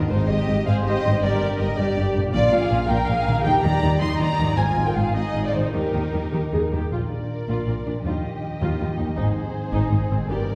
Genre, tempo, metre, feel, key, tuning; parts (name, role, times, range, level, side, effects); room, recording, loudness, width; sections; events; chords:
cinematic, heroic adventure film score; 107 BPM (dotted quarters); 6/8; straight; A4 = 440 Hz
rich symphonic violin section; melody; 0.0-10.6 s; D4 to Eb5; -35 LUFS; equal
warm symphonic violin section; second line; 0.0-10.6 s; G4 to C6; -28 LUFS; equal
rich symphonic viola section; accompaniment; 0.0-10.5 s; Ab3 to C5; -32 LUFS; equal
concert harp; arpeggios; 0.0-10.6 s; G2 to C5; -31 LUFS; equal
rich symphonic cello section; bass; 0.1-10.4 s; Eb2 to Eb3; -29 LUFS; equal
rich symphonic double bass section; bass; 0.1-10.4 s; G1 to Eb2; -28 LUFS; equal
timpani; percussion; 2.3-2.9, 6.9-7.4 s; Bb2; -34 LUFS; equal
wet scoring stage reverb, RT60 1.6 s; heard from further back in the room; -22 LUFS; mono
0.0-6.9 A section; 6.9-10.6 B section
0.1 Ab; 1.2 Gm; 2.3 Bb; 3.5 Ebadd9; 4.6 Ab; 5.7 Ebadd9; 6.9 Bb; 8.1 Ebadd9; 9.2 Ab